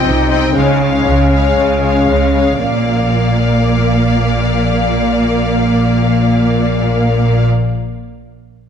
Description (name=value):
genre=cinematic, heroic adventure film score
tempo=117 BPM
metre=4/4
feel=straight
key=unclear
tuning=A4 = 440 Hz
part: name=clear symphonic violin section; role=melody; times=0.0-7.5 s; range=F5 to G5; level=-21 LUFS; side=left 3 dB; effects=none
part: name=clear studio violin section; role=second line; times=0.0-7.5 s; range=Db5 to Eb5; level=-20 LUFS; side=left 5 dB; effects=none
part: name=warm clarinet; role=second line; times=0.0-7.5 s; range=Bb3 to Eb4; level=-19 LUFS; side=left 3 dB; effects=none
part: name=rich symphonic viola section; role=accompaniment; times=0.0-7.5 s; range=Ab3 to C4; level=-20 LUFS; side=equal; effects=none
part: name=rich symphonic cello section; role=bass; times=0.0-7.5 s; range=Bb2 to Db3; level=-18 LUFS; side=right 2 dB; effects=none
part: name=rich symphonic double bass section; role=bass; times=0.0-7.5 s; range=Bb1 to Db2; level=-16 LUFS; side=right 2 dB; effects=none
room=moderate scoring stage reverb, RT60 1.6 s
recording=dark, warm production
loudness=-11 LUFS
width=side -8 dB against mid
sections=0.0-2.6 A section; 2.6-6.7 B section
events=none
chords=0.0 Cm; 0.5 Db; 2.6 Bb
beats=0.03 | 0.54 1.05 1.56 2.08 | 2.60 3.12 3.63 4.14 | 4.65 5.16 5.68 6.19